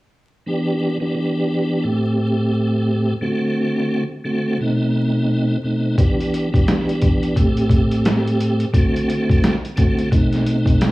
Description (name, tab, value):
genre	hip hop, boom-bap hip-hop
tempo	87 BPM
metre	4/4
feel	swing 62% on 16ths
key	E minor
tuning	A4 = 438 Hz
part	tonewheel organ	accompaniment	0.5-10.9 s	A2 to G4	-18 LUFS	equal	overdrive, chorus vibrato, fast rotary speaker, cassette tape, high-pass filter, low-pass filter
part	boom bap sampler-style drum kit	drums	6.0-10.9 s	hi-hat, kick drum, snare drum	-17 LUFS	equal	none
room	light reverb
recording	worn, warbling old tape, cassette tape, vinyl crackle, warbly pitch drift, small room reverb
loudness	-16 LUFS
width	side -19 dB against mid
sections	0.5-10.9 A section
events	none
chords	0.5 Em7; 1.8 Am7; 3.2 D7; 4.6 B7b9; 6.0 Em7; 7.4 Am7; 8.7 D7; 10.1 B7b9